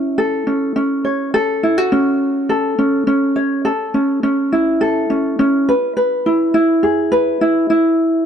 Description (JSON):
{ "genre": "pop", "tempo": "104 BPM", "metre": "4/4", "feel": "straight", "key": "A major", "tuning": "A4 = 439 Hz", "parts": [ { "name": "ukulele", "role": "solo", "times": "0.0-8.3 s", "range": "C#4 to E5", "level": "-14 LUFS", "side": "equal", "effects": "none" } ], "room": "light reverb", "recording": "dark, warm production", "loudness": "-14 LUFS", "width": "side -8 dB against mid", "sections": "0.0-3.7 A section; 3.7-8.3 B section", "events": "none", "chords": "0.0 A; 1.3 F#m; 3.7 A; 5.7 E", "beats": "0.18 0.76 | 1.34 1.92 2.50 3.08 | 3.65 4.23 4.81 5.39 | 5.97 6.54 7.12 7.70" }